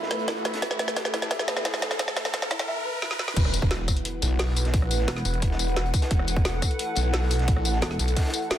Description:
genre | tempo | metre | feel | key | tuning
dark technical drum and bass | 175 BPM | 4/4 | straight | unclear | A4 = 440 Hz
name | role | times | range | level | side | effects
dark analog pad | sustained chords | 0.0-8.6 s | A3 to F#5 | -34 LUFS | left 2 dB | chorus, sidechain pumping
felt-muted upright piano | arpeggios | 0.0-3.2 s | E4 to E5 | -36 LUFS | left 1 dB | sidechain pumping, dub echo
snarling distorted saw bass | bass | 0.0-8.2 s | E1 to E2 | -27 LUFS | equal | distortion, overdrive, sidechain pumping, high-pass filter
crunchy breakbeat drum kit | drums | 0.0-8.6 s | hi-hat, snare drum | -40 LUFS | equal | none
riser and impact | sound effects | 0.0-4.7 s | none | -33 LUFS | right 1 dB | none
warbly tape-like pad | texture | 0.0-8.6 s | E4 to B5 | -35 LUFS | right 2 dB | chorus, built-in reverb, phaser, sidechain pumping
drum and bass drum kit | drums | 0.1-8.6 s | crash cymbal, hi-hat, rim click, snare drum, tambourine | -28 LUFS | equal | none
electronic kick drum | drums | 0.3-8.2 s | none | -24 LUFS | equal | high-pass filter on kick, high-pass filter on room
pulsing pluck wobble bass | bass | 5.1-5.2, 7.8-8.0 s | E1 | -30 LUFS | right 1 dB | chorus
room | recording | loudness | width
light reverb | dense, heavily limited modern master, high-pass filter | -23 LUFS | side -11 dB against mid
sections
0.0-3.4 A section; 3.4-8.6 B section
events
build-up 0.0-3.4; drum fill 0.0-2.7, 3.0-3.4; riser 0.0-3.4; filter sweep on felt piano 0.0-3.4; filter sweep 0.0-3.4; drop 3.4-8.6; impact 3.4-4.7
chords
0.0 Asus2; 3.4 E5

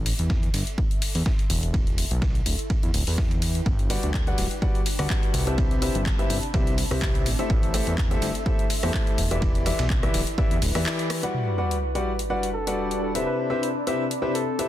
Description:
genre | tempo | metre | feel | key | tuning
piano house | 125 BPM | 4/4 | swing 55% on 16ths | G major | A4 = 438 Hz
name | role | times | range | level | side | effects
fat analog bass | bass | 0.0-10.9 s | D1 to E2 | -26 LUFS | equal | sidechain pumping
ethereal airy pad | texture | 0.0-14.7 s | C4 to C6 | -35 LUFS | equal | ensemble chorus, built-in reverb, sidechain pumping
dusty soul sampler-style drum kit | drums | 0.1-11.2 s | ride cymbal, snare drum | -40 LUFS | right 5 dB | sidechain pumping on cymbals, high-pass filter on cymbals, studio ambience, high-pass filter on snare
house drum kit | drums | 0.1-14.7 s | handclaps, hi-hat, rim click | -31 LUFS | left 2 dB | studio ambience
electronic kick drum | drums | 0.3-10.5 s | none | -24 LUFS | equal | studio ambience
warm concert grand piano | riff | 3.9-14.7 s | C3 to F#5 | -27 LUFS | left 2 dB | sidechain pumping, dub echo
sub drop | sound effects | 11.3-13.3 s | none | -30 LUFS | equal | none
trumpet with bucket mute | melody | 12.5-14.7 s | A4 to B4 | -32 LUFS | right 1 dB | dub echo
room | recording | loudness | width
little or no reverb | dense, heavily limited modern master | -22 LUFS | side -13 dB against mid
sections
0.0-11.3 A section; 11.3-14.7 B section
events
fade-in on ambient pad 0.0-11.3; break 10.9-11.3; impact 11.3-13.3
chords
0.0 Am7; 1.5 Em7; 3.7 Gmaj7; 5.6 Cmaj7; 7.3 Am7; 9.2 Em7; 11.3 Gmaj7; 13.3 Cmaj7

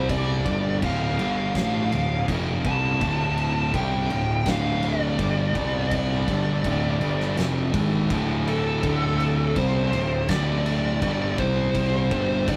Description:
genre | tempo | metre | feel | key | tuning
stoner and doom metal | 82 BPM | 4/4 | straight | D minor | A4 = 440 Hz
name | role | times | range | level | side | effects
fuzz lead guitar | melody | 0.0-12.6 s | A4 to A5 | -30 LUFS | equal | wah, distortion
mellow tonewheel organ | sustained chords | 0.0-12.6 s | C4 to A5 | -41 LUFS | equal | none
thick fuzz guitar | riff | 0.0-12.6 s | D2 to C4 | -31 LUFS | equal | distortion
thick fuzz guitar | riff | 0.0-12.6 s | D2 to C4 | -29 LUFS | equal | distortion
fuzz picked electric bass | bass | 0.0-12.6 s | D1 to C2 | -32 LUFS | equal | overdrive
oversized low-tuned drum kit | drums | 0.1-12.6 s | crash cymbal, kick drum, snare drum | -32 LUFS | equal | none
room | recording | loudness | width
moderate small room reverb, RT60 0.5 s | rough rehearsal-room recording | -24 LUFS | mono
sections
0.0-12.6 A section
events
none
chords
0.5 Dm; 5.6 C5; 6.3 Dm; 11.4 C5

